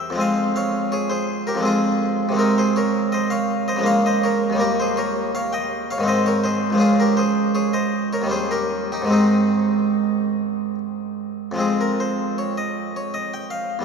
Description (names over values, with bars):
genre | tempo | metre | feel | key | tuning
classical, baroque-style suite movement for harpsichord | 72-83 BPM | 3/4 | rubato | Ab major | A4 = 440 Hz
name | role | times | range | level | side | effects
harpsichord | solo | 0.0-13.8 s | Db2 to Ab5 | -18 LUFS | right 1 dB | none
room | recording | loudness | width
wet cathedral reverb, RT60 5.3 s | in a vast, echoing space | -18 LUFS | side -6 dB against mid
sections
0.0-11.6 A section; 11.6-13.8 A section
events
none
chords
0.2 Fm; 2.4 Ab/C; 3.9 Bbm7/Db; 6.1 Ab; 6.8 Db; 8.3 Eb7; 9.1 Ab; 11.6 Fm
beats
| 0.20 0.93 1.67 | 2.41 3.13 3.87 | 4.61 5.34 6.08 | 6.82 7.56 8.32 | 9.13 9.96 10.79 | 11.61 12.38 13.13